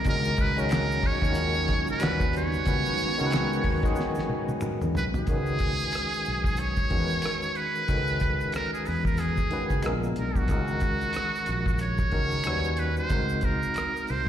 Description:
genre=R&B, neo-soul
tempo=92 BPM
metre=4/4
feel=swing 58% on 16ths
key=unclear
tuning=A4 = 440 Hz
part: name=trumpet with metal mute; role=melody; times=0.0-14.3 s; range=F#4 to C#5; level=-29 LUFS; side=right 2 dB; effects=slapback echo, tape echo
part: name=overdriven tine electric piano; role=accompaniment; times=0.0-14.3 s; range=D#3 to C#5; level=-31 LUFS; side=left 2 dB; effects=fast tremolo, slapback echo
part: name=phased string machine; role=sustained chords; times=0.0-5.3 s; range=A#2 to F#4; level=-35 LUFS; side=right 1 dB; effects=ensemble chorus, phaser
part: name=cloth-damped thuddy drum kit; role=drums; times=0.0-14.3 s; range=handclaps, hi-hat, kick drum, rim click, snare drum, toms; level=-29 LUFS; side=equal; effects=none
part: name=fingered electric bass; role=bass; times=0.1-14.3 s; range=A#1 to C#3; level=-29 LUFS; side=equal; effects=none
part: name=tube shaker and finger snaps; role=percussion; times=0.1-14.3 s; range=none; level=-47 LUFS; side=left 4 dB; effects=slapback echo
room=light reverb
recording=live gig heard through the venue's PA, recital hall reverb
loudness=-24 LUFS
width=side -10 dB against mid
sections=0.0-5.3 A section; 5.3-14.3 B section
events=drum fill 4.0-5.3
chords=0.1 D#m7/C#; 2.0 D#7alt; 2.7 C#9sus4; 5.3 C#m7; 9.8 A#7b9; 10.5 D#m7/C#; 12.4 D#7alt; 13.1 G#9

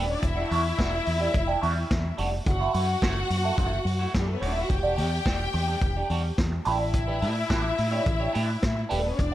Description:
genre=disco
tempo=107 BPM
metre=4/4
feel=straight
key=unclear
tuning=A4 = 444 Hz
part: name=clear studio string section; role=second line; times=0.0-9.3 s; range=G3 to G5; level=-30 LUFS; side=left 2 dB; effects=none
part: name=electric guitar at the edge of break-up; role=accompaniment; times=0.0-9.3 s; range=G3 to C#5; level=-30 LUFS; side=right 4 dB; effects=wah, phaser
part: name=fingered electric bass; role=bass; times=0.0-9.3 s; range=D#1 to A2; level=-28 LUFS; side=equal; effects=none
part: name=vintage drum kit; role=drums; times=0.2-9.3 s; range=hi-hat, kick drum, snare drum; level=-29 LUFS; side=equal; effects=none
room=light reverb, small room ambience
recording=none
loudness=-23 LUFS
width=side -13 dB against mid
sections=0.0-9.3 A section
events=none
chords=0.2 Em9; 2.5 F#m7; 4.7 Em9; 6.7 A9sus4

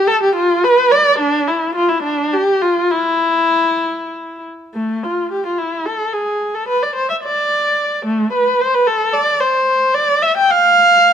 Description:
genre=classical, baroque-style suite movement for unaccompanied viola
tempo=62-75 BPM (dotted quarters)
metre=6/8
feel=rubato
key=unclear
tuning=A4 = 441 Hz
part: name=warm viola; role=solo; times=0.0-11.1 s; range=A3 to G5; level=-13 LUFS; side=equal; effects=none
room=moderate stone room reverb, RT60 1.3 s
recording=dark, warm production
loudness=-13 LUFS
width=side -8 dB against mid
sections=0.0-4.7 A section; 4.7-11.1 A section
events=none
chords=none

